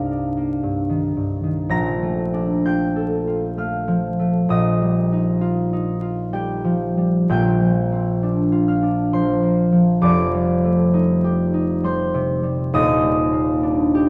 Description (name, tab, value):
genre	classical, solo harp piece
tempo	65 BPM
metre	3/4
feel	uneven beats, rubato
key	Bb major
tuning	A4 = 440 Hz
part	concert harp	solo	0.0-14.1 s	Eb1 to Bb6	-20 LUFS	equal	none
room	wet concert hall reverb, RT60 2.4 s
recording	vinyl crackle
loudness	-20 LUFS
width	mono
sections	0.0-1.7 A section; 1.7-14.1 B section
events	none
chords	0.0 Cm11; 1.7 Bbmaj7; 4.5 Ebadd9/Bb; 7.3 Bbadd9; 10.0 F13; 12.7 Ebmaj7